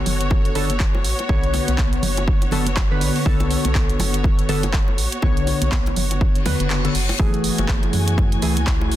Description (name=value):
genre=deep house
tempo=122 BPM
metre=4/4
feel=swing 59% on 16ths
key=unclear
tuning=A4 = 440 Hz
part: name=warm analog keys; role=stabs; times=0.0-8.6 s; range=D3 to C#5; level=-24 LUFS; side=equal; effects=chorus, sidechain pumping, tape echo
part: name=warm studio string section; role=texture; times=0.0-9.0 s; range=B3 to G#5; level=-28 LUFS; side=left 2 dB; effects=sidechain pumping
part: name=round analog bass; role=bass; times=0.1-9.0 s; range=E1 to F#2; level=-24 LUFS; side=equal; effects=sidechain pumping
part: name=house drum kit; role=drums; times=0.1-9.0 s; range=handclaps, hi-hat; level=-27 LUFS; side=right 2 dB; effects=overdrive
part: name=congas and bongos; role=percussion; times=0.1-8.9 s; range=none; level=-30 LUFS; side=right 2 dB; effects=none
part: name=electronic kick drum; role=drums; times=0.3-8.8 s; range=none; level=-20 LUFS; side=equal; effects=overdrive
part: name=reverse cymbal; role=sound effects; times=6.4-7.2 s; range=none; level=-29 LUFS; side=left 5 dB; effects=none
part: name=warbly tape-like pad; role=sustained chords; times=7.4-9.0 s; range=A3 to G#5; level=-30 LUFS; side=right 2 dB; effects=chorus, built-in reverb, sidechain pumping
room=little or no reverb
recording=dense, heavily limited modern master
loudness=-17 LUFS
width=side -13 dB against mid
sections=0.0-9.0 A section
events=reverse cymbal 6.4-7.2; kick drops out 6.7-7.2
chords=0.0 Bm7; 7.2 F#m9